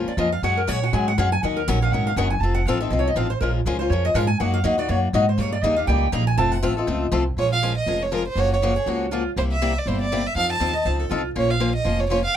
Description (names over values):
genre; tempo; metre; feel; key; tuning
acoustic string swing (jazz manouche); 242 BPM; 4/4; swing 57% on 8ths; Bb minor; A4 = 442 Hz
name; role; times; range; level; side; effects
picked swing-style acoustic guitar; accompaniment; 0.0-12.2 s; C3 to Db5; -25 LUFS; left 5 dB; none
upright bass; bass; 0.0-12.3 s; F1 to Bb2; -23 LUFS; right 1 dB; none
picked steel-string acoustic guitar; second line; 0.1-11.3 s; F4 to Bb5; -25 LUFS; right 1 dB; none
warm violin; melody; 7.4-12.4 s; Bb4 to A5; -23 LUFS; right 4 dB; none
room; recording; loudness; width
little or no reverb; close, detailed microphones; -19 LUFS; side -10 dB against mid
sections
0.0-7.4 A section; 7.4-12.4 B section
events
steel-string acoustic guitar solo 0.0-7.4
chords
0.4 Gbsus2; 1.4 Ebm7; 2.4 F7; 3.4 Bbm7; 4.4 Gb6; 5.4 Eb7; 6.4 F; 7.4 Bbm7; 8.4 Gbmaj7; 9.4 C7; 10.4 F7; 11.4 Bbmadd9